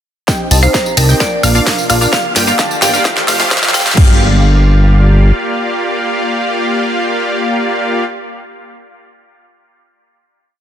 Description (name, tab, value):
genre	EDM, festival progressive house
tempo	130 BPM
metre	4/4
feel	straight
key	G minor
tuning	A4 = 440 Hz
part	wide unison pluck	arpeggios	0.3-8.0 s	F5 to Bb5	-21 LUFS	right 1 dB	phaser, sidechain pumping, dub echo
part	supersaw stab	riff	0.3-8.0 s	A3 to Bb5	-16 LUFS	equal	sidechain pumping, low-pass filter, dub echo
part	electronic kick drum	drums	0.3-4.1 s	none	-13 LUFS	equal	overdrive, high-pass filter on kick
part	house drum kit	drums	0.3-4.1 s	crash cymbal, hi-hat, snare drum, tambourine, woodblock	-15 LUFS	equal	high-pass filter on snare, high-pass filter on perc, high-pass filter on hats, high-pass filter on cymbals, high-pass filter on room
part	riser	sound effects	1.8-4.0 s	none	-26 LUFS	right 1 dB	none
part	fat analog bass	bass	0.5-5.3 s	F1 to C2	-10 LUFS	equal	sidechain pumping
part	marimba with medium hard mallets	melody	0.6-4.0 s	Bb4 to G5	-19 LUFS	equal	dub echo
room	light reverb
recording	dense, heavily limited modern master, high-pass filter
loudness	-10 LUFS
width	side -10 dB against mid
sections	0.3-4.0 build; 4.0-7.7 final chord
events	build-up 0.3-4.0; drum fill 0.3-4.0; filter sweep on supersaw synth 0.3-4.0; filter sweep 0.3-4.0; riser 1.8-4.0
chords	0.3 Cm; 1.2 Bb; 2.1 Gm7; 3.0 Fadd9; 4.0 Gm7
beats	| 0.28 0.74 1.20 1.67 | 2.13 2.59 3.05 3.51 | 3.97 4.43 4.90 5.36 | 5.82 6.28 6.74 7.20